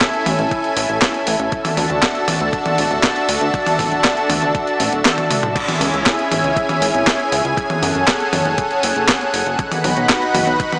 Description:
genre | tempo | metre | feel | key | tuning
italo disco | 119 BPM | 4/4 | straight | C# minor | A4 = 440 Hz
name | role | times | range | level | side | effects
lush unison pad | sustained chords | 0.0-10.8 s | C#4 to B5 | -20 LUFS | equal | chorus, shimmer reverb
clean 12-bit digital drum machine | drums | 0.0-10.8 s | crash cymbal, handclaps, hi-hat, snare drum, toms | -21 LUFS | equal | none
electronic kick drum | drums | 0.0-10.7 s | none | -27 LUFS | equal | none
chorused synth bass | bass | 0.3-10.6 s | D1 to F#2 | -27 LUFS | equal | analog delay
room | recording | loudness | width
moderate lush hall reverb, RT60 2.0 s | dry, gritty hardware recording, small speaker sound | -17 LUFS | mono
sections
0.0-5.6 A section; 5.6-10.8 B section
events
kick drops out 5.1-5.6; drum fill 5.1-5.6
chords
0.0 A; 1.5 Dadd9; 5.6 C#m; 7.6 F#madd9; 9.6 B

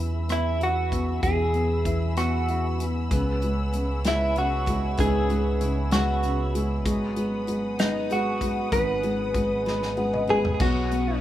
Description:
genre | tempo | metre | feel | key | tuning
six-eight pop ballad | 64 BPM (dotted quarters) | 6/8 | straight | unclear | A4 = 440 Hz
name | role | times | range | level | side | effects
felt-muted upright piano | accompaniment | 0.0-11.2 s | G#2 to F#5 | -29 LUFS | left 1 dB | none
warm studio string section | sustained chords | 0.0-11.2 s | G#4 to E6 | -37 LUFS | left 2 dB | none
fingered electric bass | bass | 0.0-11.2 s | G#1 to E2 | -28 LUFS | right 1 dB | none
direct-recorded clean electric guitar | melody | 0.3-11.2 s | D#4 to B4 | -26 LUFS | right 1 dB | analog chorus
natural country drum kit | drums | 0.3-11.1 s | crash cymbal, hi-hat, kick drum, rim click, snare drum, toms | -29 LUFS | equal | none
picked steel-string acoustic guitar | arpeggios | 3.1-11.2 s | F#3 to G#4 | -32 LUFS | equal | digital delay
room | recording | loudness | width
light reverb, small room reverb | rough home demo mix, small room ambience | -22 LUFS | side -12 dB against mid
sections
0.0-10.6 A section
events
drum fill 9.7-10.6; felt piano fill 9.7-10.6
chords
0.0 E; 3.1 C#m7; 6.9 G#m7; 10.6 Badd9

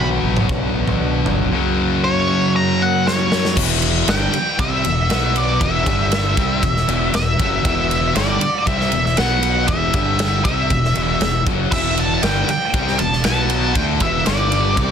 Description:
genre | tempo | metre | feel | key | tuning
quiet-loud alternative rock | 118 BPM | 4/4 | straight | E minor | A4 = 440 Hz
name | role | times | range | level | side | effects
octave-fuzz lead guitar | melody | 0.0-14.9 s | C#5 to B5 | -20 LUFS | equal | distortion, slapback echo
electric guitar through a small old amp | arpeggios | 0.0-3.6 s | F#2 to D4 | -26 LUFS | equal | lush chorus
sludgy distorted guitar | riff | 0.0-14.9 s | E2 to D4 | -22 LUFS | left 10 dB | overdrive
thick fuzz guitar | riff | 0.0-14.9 s | E2 to D4 | -23 LUFS | right 9 dB | distortion
growling fingered electric bass | bass | 0.0-14.9 s | E1 to B2 | -23 LUFS | equal | overdrive
big rock drum kit | drums | 0.4-14.9 s | crash cymbal, kick drum, ride cymbal, snare drum, toms | -21 LUFS | equal | none
room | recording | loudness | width
light reverb, small room ambience | dense, heavily limited modern master | -15 LUFS | side -8 dB against mid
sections
0.0-3.6 A section; 3.6-14.9 B section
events
lead electric guitar solo 0.0-3.6; drum fill 3.1-3.6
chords
0.0 Bm; 1.5 F#; 3.6 Em; 5.1 B5; 5.6 E5; 5.9 G5; 6.4 Em; 9.2 B5; 9.7 E5; 9.9 G5; 10.5 Em; 13.3 B5; 13.8 E5; 14.3 G5

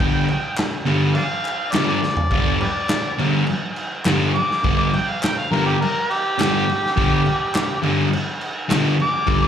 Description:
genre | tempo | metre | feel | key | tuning
garage rock duo or trio | 104 BPM | 4/4 | straight | unclear | A4 = 438 Hz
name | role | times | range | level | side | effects
overdriven harmonica | melody | 0.0-9.5 s | G4 to D6 | -23 LUFS | equal | slapback echo, tape echo
thick fuzz guitar | riff | 0.0-9.5 s | G2 to G3 | -20 LUFS | equal | distortion, slapback echo
raw garage drum kit | drums | 0.0-9.4 s | crash cymbal, kick drum, snare drum, toms | -23 LUFS | equal | none
group handclap | percussion | 0.6-8.8 s | none | -30 LUFS | left 1 dB | none
room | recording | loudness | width
light reverb, small room ambience | live gig heard through the venue's PA, club reverb | -17 LUFS | side -9 dB against mid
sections
0.0-9.5 A section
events
harmonica solo 0.0-9.5; drum fill 2.0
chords
0.0 G5

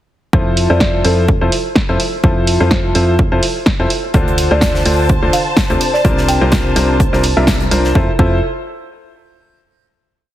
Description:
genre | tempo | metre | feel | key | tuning
piano house | 126 BPM | 4/4 | swing 55% on 16ths | F major | A4 = 442 Hz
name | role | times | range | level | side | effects
bright baby grand piano | riff | 0.3-8.4 s | C3 to E5 | -16 LUFS | left 1 dB | sidechain pumping, low-pass filter, ping-pong delay
organ-like FM bass | bass | 0.3-8.4 s | C2 to F2 | -17 LUFS | equal | sidechain pumping
electronic kick drum | drums | 0.3-8.3 s | none | -16 LUFS | equal | none
punchy analog drum machine | drums | 0.6-7.8 s | hi-hat, snare drum | -18 LUFS | equal | none
buzzing marimba with medium hard mallets | melody | 0.7-7.0 s | A4 to G5 | -21 LUFS | equal | vintage 12-bit sampler grit, ping-pong delay
warm studio violin section | sustained chords | 4.1-8.0 s | C5 to A5 | -22 LUFS | equal | sidechain pumping
gated 80s drum kit | drums | 4.1-7.9 s | hi-hat, snare drum | -28 LUFS | left 2 dB | sidechain pumping on hats, high-pass filter on hats, high-pass filter on snare, high-pass filter on room
room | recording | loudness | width
light reverb, studio ambience | heavily compressed radio sound, multiband compression | -11 LUFS | side -13 dB against mid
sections
0.3-8.0 groove; 8.0-9.9 final chord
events
band accent 7.5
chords
0.3 Fmaj7; 3.9 Dm7; 5.8 C9sus4; 8.0 Fmaj7

